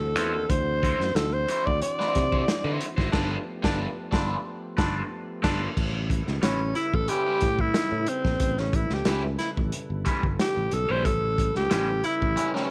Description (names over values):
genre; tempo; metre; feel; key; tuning
funk; 91 BPM; 4/4; straight; A mixolydian; A4 = 440 Hz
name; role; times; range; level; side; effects
raspy alto saxophone; melody; 0.0-12.7 s; C4 to D5; -29 LUFS; equal; none
mellow tonewheel organ; sustained chords; 0.0-12.7 s; C#3 to B4; -40 LUFS; equal; none
fingered electric bass; bass; 0.0-12.4 s; G1 to D3; -31 LUFS; equal; none
raw garage guitar; accompaniment; 0.2-12.7 s; G3 to C#5; -35 LUFS; equal; overdrive, phaser
crunchy breakbeat drum kit; drums; 0.2-12.6 s; crash cymbal, hi-hat, kick drum, snare drum; -30 LUFS; equal; none
mellow baritone saxophone; second line; 3.1-12.2 s; D4 to E4; -36 LUFS; equal; none
room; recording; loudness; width
light reverb, studio reverb; none; -26 LUFS; mono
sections
0.0-5.8 A section; 5.8-12.7 B section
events
band accent 3.1-5.8; alto saxophone solo 5.8-12.7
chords
0.0 D9; 3.1 G9; 5.8 A9